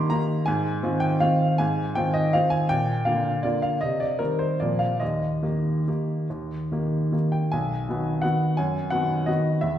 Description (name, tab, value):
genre	classical, piano waltz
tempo	134-188 BPM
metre	3/4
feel	rubato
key	Eb major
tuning	A4 = 440 Hz
part	clear upright piano	solo	0.0-9.8 s	B1 to D6	-22 LUFS	equal	none
room	wet recital hall reverb, RT60 1.8 s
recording	heard from further back in the room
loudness	-22 LUFS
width	side -11 dB against mid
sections	0.0-7.5 A section; 7.5-9.8 B section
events	none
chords	0.5 Fm7/Ab; 2.7 Bb; 3.8 Cm; 4.6 Bb; 5.0 Eb; 7.5 B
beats	0.10 | 0.47 0.83 1.21 | 1.59 1.96 2.33 | 2.70 3.06 3.44 | 3.82 4.20 4.60 | 5.01 5.44 5.88 | 6.31 6.71 7.13 | 7.53 7.88 8.23 | 8.58 8.93 9.28 | 9.62